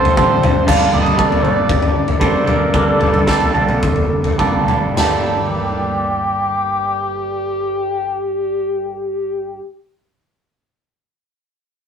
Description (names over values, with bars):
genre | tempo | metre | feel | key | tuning
psychedelic rock | 101-119 BPM | 4/4 | straight | G minor | A4 = 439 Hz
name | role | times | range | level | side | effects
overdriven synth lead | melody | 0.0-9.6 s | G4 to F5 | -19 LUFS | left 1 dB | distortion, phaser
twangy electric guitar | riff | 0.0-9.7 s | G2 to A4 | -18 LUFS | right 3 dB | phaser
picked electric bass | bass | 0.0-9.6 s | F1 to G2 | -27 LUFS | equal | none
raw garage drum kit | drums | 0.1-5.1 s | crash cymbal, kick drum, snare drum, splash cymbal, toms | -17 LUFS | left 1 dB | none
room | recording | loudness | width
moderate small room reverb, RT60 0.5 s | rough rehearsal-room recording, tube saturation | -14 LUFS | side -7 dB against mid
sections
0.7-5.0 A section; 5.0-9.7 B section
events
slowing down 0.7-5.0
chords
0.0 Fadd9; 0.7 Gmadd9